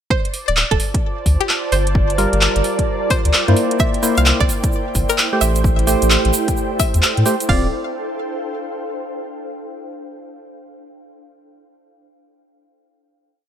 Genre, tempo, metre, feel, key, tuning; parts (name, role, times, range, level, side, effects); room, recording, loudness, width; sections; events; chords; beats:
UK garage, two-step garage; 130 BPM; 4/4; swing 64% on 16ths; D minor; A4 = 438 Hz
string-like resonator pluck; melody; 0.1-7.7 s; G4 to F5; -23 LUFS; equal; chorus, ping-pong delay
warm analog pad; sustained chords; 0.1-7.5 s; D5; -29 LUFS; right 5 dB; chorus, sidechain pumping
house drum kit; drums; 0.1-7.6 s; hi-hat, kick drum; -19 LUFS; equal
ethereal airy pad; texture; 1.1-9.3 s; D4 to A5; -25 LUFS; right 1 dB; ensemble chorus, built-in reverb, sidechain pumping
house drum kit; drums; 0.3-7.5 s; handclaps, hi-hat; -19 LUFS; equal
soft dub sub bass; bass; 0.5-7.7 s; D1 to A2; -17 LUFS; equal
percussive organ stab; stabs; 2.2-7.7 s; G3 to D5; -20 LUFS; equal; chorus, digital delay
egg shaker; percussion; 3.8-7.5 s; -26 LUFS; right 5 dB
light reverb; bright 1980s-style digital production; -15 LUFS; side -9 dB against mid
0.1-7.5 groove; 7.5-9.3 final chord
0.1 Dm7; 1.7 Gm7; 3.6 C7; 5.4 Am7; 7.5 Dm7
| 0.10 0.57 1.03 1.49 | 1.95 2.41 2.87 3.33 | 3.80 4.26 4.72 5.18 | 5.64 6.11 6.57 7.03 | 7.49 7.95 8.41 8.87